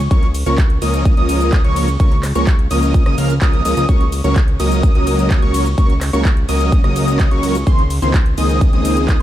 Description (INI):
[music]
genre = EDM, festival progressive house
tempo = 127 BPM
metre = 4/4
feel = straight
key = unclear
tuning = A4 = 440 Hz
[part]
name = fat analog bass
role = bass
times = 0.0-9.2 s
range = Db2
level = -18 LUFS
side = equal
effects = sidechain pumping
[part]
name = wide unison lead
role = arpeggios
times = 0.1-9.2 s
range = C6 to F6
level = -23 LUFS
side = left 2 dB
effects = wide subtle chorus, sidechain pumping, ping-pong delay
[part]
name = big supersaw lead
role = riff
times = 0.1-9.2 s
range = Eb3 to F5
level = -20 LUFS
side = equal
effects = sidechain pumping, ping-pong delay
[part]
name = big-room dance drum kit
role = drums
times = 0.1-9.2 s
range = handclaps, hi-hat, ride cymbal, rim click, shaker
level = -27 LUFS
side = right 1 dB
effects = small room ambience
[part]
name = electronic kick drum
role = drums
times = 0.1-9.2 s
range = none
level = -13 LUFS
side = equal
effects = small room ambience
[sound]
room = little or no reverb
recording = dark, warm production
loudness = -12 LUFS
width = side -13 dB against mid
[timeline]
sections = 0.0-9.2 A section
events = none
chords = 0.1 Bbm/Db; 3.9 Gb/Db; 7.7 Abadd9/Db